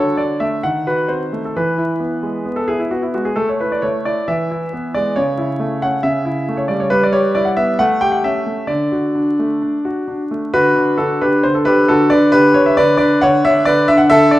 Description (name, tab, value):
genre	classical-period piano sonatina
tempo	134 BPM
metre	4/4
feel	straight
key	A major, D major from 6.9 s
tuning	A4 = 440 Hz
part	clear concert grand piano	solo	0.0-14.4 s	C#3 to G5	-13 LUFS	equal	none
room	moderate recital hall reverb, RT60 1.4 s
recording	vinyl crackle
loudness	-14 LUFS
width	side -16 dB against mid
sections	0.0-10.5 A section; 10.5-14.4 B section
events	none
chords	0.0 D; 0.6 D#dim7; 1.5 E; 3.4 A5; 4.3 E; 5.2 A/C#; 6.0 A7/C#; 6.9 Em/G; 7.8 A7; 8.7 D; 12.3 G/D; 13.2 Dmaj13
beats	0.18 0.63 1.08 | 1.53 1.99 2.45 2.90 | 3.37 3.83 4.27 4.72 | 5.17 5.61 6.05 6.49 | 6.93 7.37 7.81 8.26 | 8.71 9.17 9.63 10.08 | 10.54 10.99 11.44 11.88 | 12.33 12.77 13.21 13.66 | 14.10